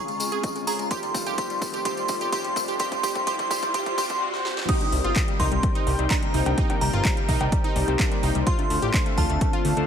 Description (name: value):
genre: progressive house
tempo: 127 BPM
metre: 4/4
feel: straight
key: C dorian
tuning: A4 = 440 Hz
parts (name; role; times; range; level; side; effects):
- glassy synth bell; melody; 0.0-9.8 s; A5 to Eb6; -28 LUFS; right 1 dB; chorus, sidechain pumping, ping-pong delay
- lush unison pad; sustained chords; 0.0-9.9 s; Db2 to G5; -36 LUFS; equal; chorus, sidechain pumping
- analog pluck; arpeggios; 0.0-9.9 s; G3 to Ab4; -30 LUFS; equal; chorus, sidechain pumping, ping-pong delay
- chorused polysynth; stabs; 0.0-9.9 s; C3 to C5; -32 LUFS; left 2 dB; sidechain pumping, ping-pong delay
- riser; sound effects; 0.4-4.7 s; none; -36 LUFS; right 2 dB; none
- house drum kit; drums; 0.1-9.9 s; crash cymbal, handclaps, hi-hat, snare drum; -32 LUFS; equal; overdrive, sidechain pumping on hats, high-pass filter on hats, high-pass filter on snare, sidechain pumping on cymbals, high-pass filter on cymbals, high-pass filter on room
- tambourine; percussion; 0.1-4.2 s; none; -34 LUFS; left 2 dB; none
- electronic kick drum; drums; 0.4-9.5 s; none; -26 LUFS; equal; overdrive
- congas and cowbell; percussion; 4.8-8.7 s; none; -33 LUFS; left 2 dB; sidechain pumping on perc
- fat analog bass; bass; 4.9-9.8 s; G1 to D2; -25 LUFS; equal; sidechain pumping
room: light reverb, digital ambience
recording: high-pass filter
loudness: -21 LUFS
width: side -8 dB against mid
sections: 0.0-4.7 A section; 4.7-9.9 B section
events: build-up 0.0-4.7; drum fill 0.0-4.2, 4.3-4.7; filter sweep on analog polysynth 0.0-4.7; riser 0.4-4.7; drop 4.7-9.9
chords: 0.0 Dbmaj7; 0.9 F7; 4.7 Cm7; 8.5 Dm7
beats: 0.44 | 0.91 1.38 1.85 2.33 | 2.80 3.27 3.74 4.21 | 4.69 5.16 5.63 6.11 | 6.58 7.05 7.52 8.00 | 8.47 8.94 9.41